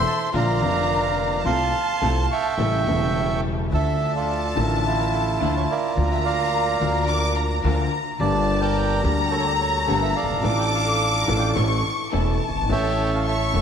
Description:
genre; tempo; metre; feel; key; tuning
tango; 107 BPM; 4/4; rubato; D harmonic minor from 3.7 s; A4 = 438 Hz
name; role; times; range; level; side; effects
bandoneon; melody; 0.0-13.6 s; E4 to Db6; -25 LUFS; right 5 dB; none
dark studio violin section; second line; 0.0-13.6 s; E5 to D6; -26 LUFS; left 3 dB; tape echo
dark upright piano; accompaniment; 0.3-13.6 s; E1 to E5; -26 LUFS; left 4 dB; none
dark studio string section; stabs; 0.3-13.6 s; Bb3 to A5; -33 LUFS; right 1 dB; none
upright bass; bass; 0.3-13.6 s; E1 to D2; -25 LUFS; right 1 dB; none
room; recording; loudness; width
moderate scoring stage reverb, RT60 2.1 s; none; -19 LUFS; side -7 dB against mid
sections
0.0-3.7 A section; 3.7-13.6 B section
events
none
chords
0.3 Bb; 1.5 F/C; 2.6 A7; 3.7 Dmadd9; 6.0 Bb/D; 8.2 Gmadd9; 10.4 Dm/A; 11.6 A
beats
0.33 0.89 | 1.45 2.02 2.58 3.15 | 3.72 4.28 4.84 5.40 | 5.96 6.52 7.08 7.64 | 8.20 8.76 9.31 9.87 | 10.44 11.00 11.56 12.13 | 12.70 13.26

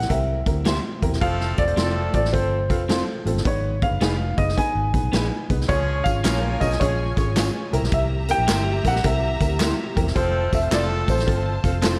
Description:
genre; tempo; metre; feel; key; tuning
uptempo 1960s-style soul; 107 BPM; 4/4; swing 66% on 8ths; unclear; A4 = 440 Hz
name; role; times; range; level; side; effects
warm baby grand piano; melody; 0.0-11.8 s; C5 to Ab5; -28 LUFS; equal; none
dark upright piano; accompaniment; 0.0-12.0 s; Ab2 to Db5; -31 LUFS; equal; none
vintage muted fingered electric bass; bass; 0.0-12.0 s; E1 to E2; -27 LUFS; equal; none
swinging big-band drum kit; drums; 0.0-12.0 s; hi-hat, kick drum, snare drum; -27 LUFS; equal; none
electric guitar through a small old amp; stabs; 0.7-12.0 s; Bb3 to Db5; -32 LUFS; equal; ensemble chorus
warm horn section; second line; 1.2-11.8 s; F3 to F5; -33 LUFS; equal; none
warm studio string section; second line; 5.7-12.0 s; F4 to Bb5; -34 LUFS; equal; none
tambourine and handclaps; percussion; 5.7-12.0 s; none; -36 LUFS; equal; none
room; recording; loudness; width
light reverb, small room ambience; dark, warm production; -22 LUFS; mono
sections
0.0-12.0 A section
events
none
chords
0.0 C7; 1.2 F; 3.5 Abm; 5.7 Db; 7.6 C7; 10.2 F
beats
0.10 0.66 | 1.22 1.78 2.34 2.90 | 3.46 4.02 4.58 5.13 | 5.69 6.25 6.81 7.37 | 7.93 8.48 9.04 9.60 | 10.16 10.72 11.28 11.84

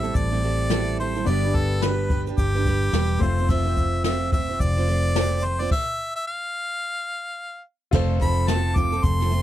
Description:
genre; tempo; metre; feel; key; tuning
acoustic pop; 108 BPM; 4/4; swing 60% on 16ths; unclear; A4 = 440 Hz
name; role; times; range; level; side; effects
clear harmonica; melody; 0.0-9.4 s; G4 to D6; -27 LUFS; left 1 dB; none
bright concert grand piano; accompaniment; 0.0-9.4 s; A3 to D5; -34 LUFS; left 6 dB; none
picked steel-string acoustic guitar; accompaniment; 0.0-9.4 s; A2 to C5; -28 LUFS; right 9 dB; none
vintage muted fingered electric bass; bass; 0.0-9.4 s; E1 to A1; -23 LUFS; left 1 dB; none
jazz brush drum kit; drums; 0.0-9.4 s; crash cymbal, kick drum, shaker, snare drum; -25 LUFS; left 1 dB; none
room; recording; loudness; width
little or no reverb; none; -20 LUFS; side -12 dB against mid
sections
0.0-7.9 A section; 7.9-9.4 B section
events
stop 5.7-7.9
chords
0.0 Am7; 1.3 G; 3.2 F; 5.7 N.C.; 7.9 F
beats
0.15 0.71 | 1.27 1.82 2.38 2.94 | 3.49 4.05 4.60 5.16 | 5.71 6.27 6.82 7.38 | 7.93 8.48 9.04

